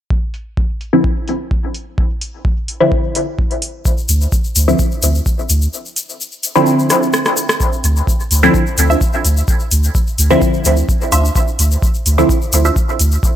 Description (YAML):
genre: dub techno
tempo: 128 BPM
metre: 4/4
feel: straight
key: D minor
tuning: A4 = 442 Hz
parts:
  - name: electronic kick drum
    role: drums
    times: 0.1-13.3 s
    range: none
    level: -17 LUFS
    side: equal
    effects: overdrive
  - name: booming analog drum machine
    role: drums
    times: 0.3-13.1 s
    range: hi-hat, rim click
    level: -19 LUFS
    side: equal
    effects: overdrive, low-pass filter on hats, low-pass filter on snare, low-pass filter on room
  - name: filtered dub chord stab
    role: stabs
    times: 0.9-12.4 s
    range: D3 to E4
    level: -16 LUFS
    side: equal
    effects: phaser, sidechain pumping, dub echo
  - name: egg shaker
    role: percussion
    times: 3.9-13.3 s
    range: none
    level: -22 LUFS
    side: left 4 dB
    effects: none
  - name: soft dub sub bass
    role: bass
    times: 4.1-13.2 s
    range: D2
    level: -13 LUFS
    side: equal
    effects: sidechain pumping
  - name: filtered dub chord stab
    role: riff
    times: 8.9-12.8 s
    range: D4 to E5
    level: -20 LUFS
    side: right 2 dB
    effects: phaser, sidechain pumping, dub echo
room: light reverb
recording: none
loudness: -13 LUFS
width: side -11 dB against mid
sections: 0.1-7.6 A section; 7.6-13.4 B section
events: filter sweep on drum 0.1-7.6; filter sweep on synth stab 0.1-7.6; kick drops out 5.7-7.6; drum fill 6.9-7.6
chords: 0.1 Dm9